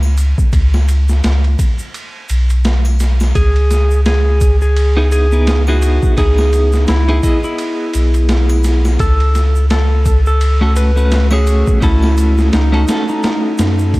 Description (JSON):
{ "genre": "trip hop", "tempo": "85 BPM", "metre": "4/4", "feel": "swing 58% on 16ths", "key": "C# minor", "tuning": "A4 = 439 Hz", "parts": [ { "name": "soft dub sub bass", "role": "bass", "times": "0.0-14.0 s", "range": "B1 to F#2", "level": "-12 LUFS", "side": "equal", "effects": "none" }, { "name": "triangle and tube shaker", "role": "percussion", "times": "0.0-14.0 s", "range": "none", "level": "-34 LUFS", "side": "right 1 dB", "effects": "none" }, { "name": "boom bap sampler-style drum kit", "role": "drums", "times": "0.2-14.0 s", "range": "kick drum, ride cymbal, snare drum", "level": "-18 LUFS", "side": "equal", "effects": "overdrive, vintage 12-bit sampler grit" }, { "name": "clean lap steel guitar", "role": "melody", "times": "3.4-14.0 s", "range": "D#4 to B4", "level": "-18 LUFS", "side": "equal", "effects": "tape echo" }, { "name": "clean electric guitar", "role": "accompaniment", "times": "5.0-14.0 s", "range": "A3 to D#5", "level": "-19 LUFS", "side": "equal", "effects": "tremolo, vintage 12-bit sampler grit" } ], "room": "light reverb, digital ambience", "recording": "dark, warm production", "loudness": "-11 LUFS", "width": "side -20 dB against mid", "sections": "0.0-14.0 A section", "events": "none", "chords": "0.0 Bsus2; 3.4 C#m7; 9.0 F#m/C#" }